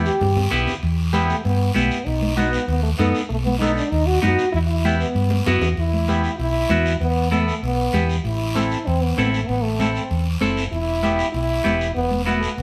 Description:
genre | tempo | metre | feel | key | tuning
latin, cumbia | 194 BPM | 4/4 | straight | E harmonic minor, E minor from 5.8 s | A4 = 440 Hz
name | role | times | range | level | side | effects
semi-hollow electric guitar | accompaniment | 0.0-12.5 s | B3 to A4 | -26 LUFS | equal | phaser
hollow-body short-scale fingered electric bass | bass | 0.0-12.6 s | E1 to G2 | -24 LUFS | equal | none
warm French horn | melody | 0.1-12.6 s | A3 to G4 | -26 LUFS | equal | none
congas | percussion | 0.1-12.4 s | none | -29 LUFS | equal | none
guiro | percussion | 0.1-12.6 s | none | -35 LUFS | equal | none
room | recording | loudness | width
moderate stone room reverb, RT60 1.3 s | band playing live in one room | -20 LUFS | mono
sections
0.0-5.8 A section; 5.8-12.6 B section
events
drum fill 0.0-0.8, 5.3-5.8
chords
0.0 Em; 2.1 B7; 4.5 Em; 8.2 Am; 10.7 Em

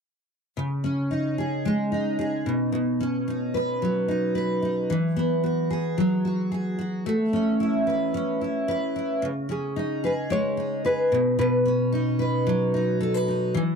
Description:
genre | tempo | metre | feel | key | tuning
pop | 111 BPM | 4/4 | straight | unclear | A4 = 440 Hz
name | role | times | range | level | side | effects
picked steel-string acoustic guitar | accompaniment | 0.6-13.8 s | B2 to B4 | -23 LUFS | equal | double-tracked left and right
nylon-string guitar | melody | 9.5-13.2 s | G#4 to C#5 | -24 LUFS | left 1 dB | none
room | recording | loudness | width
light reverb | dry, close 1970s-style studio recording | -22 LUFS | side -6 dB against mid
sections
0.6-9.2 A section; 9.2-13.8 B section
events
none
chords
0.6 C#sus2; 2.5 Badd9; 4.9 Eadd9; 7.1 Aadd9; 9.2 C#sus2; 11.1 Badd9

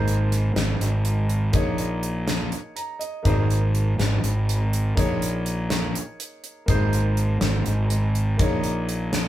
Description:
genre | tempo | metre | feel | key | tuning
progressive instrumental, band music in an uneven meter | 245 BPM (eighths) | 7/8 | straight | Bb minor | A4 = 440 Hz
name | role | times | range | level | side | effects
clear grand piano | accompaniment | 0.0-9.3 s | Bb3 to Bb5 | -30 LUFS | equal | none
fuzz fingered electric bass | bass | 0.0-9.3 s | Ab1 to Bb1 | -22 LUFS | equal | overdrive
gated 80s drum kit | drums | 0.1-9.2 s | hi-hat, kick drum, snare drum | -25 LUFS | equal | none
room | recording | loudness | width
moderate studio reverb, RT60 0.5 s | band playing live in one room | -21 LUFS | side -13 dB against mid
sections
0.0-9.3 A section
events
grand piano fill 2.5-3.3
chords
0.0 Ab; 1.5 Bbm; 3.3 Ab; 5.0 Bbm; 6.7 Ab; 8.4 Bbm

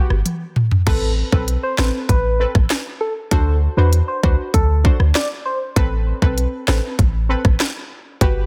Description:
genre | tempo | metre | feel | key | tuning
dancehall | 98 BPM | 4/4 | straight | A dorian | A4 = 441 Hz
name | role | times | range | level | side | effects
synth brass stab | accompaniment | 0.0-8.5 s | B3 to C5 | -28 LUFS | equal | chorus
clean 808-style bass | bass | 0.1-8.5 s | G1 to E2 | -20 LUFS | equal | none
island pop drum kit | drums | 0.1-8.4 s | crash cymbal, hi-hat, kick drum, rim click, snare drum, toms | -20 LUFS | equal | none
soft struck synth lead | melody | 0.9-5.6 s | A4 to D5 | -27 LUFS | equal | chorus, phaser, tape echo
room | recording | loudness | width
little or no reverb | dense, heavily limited modern master | -18 LUFS | mono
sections
0.0-8.5 A section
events
drum fill 0.3-0.9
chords
0.0 Gmaj7; 0.9 Amadd9; 3.3 D7; 5.8 Amadd9

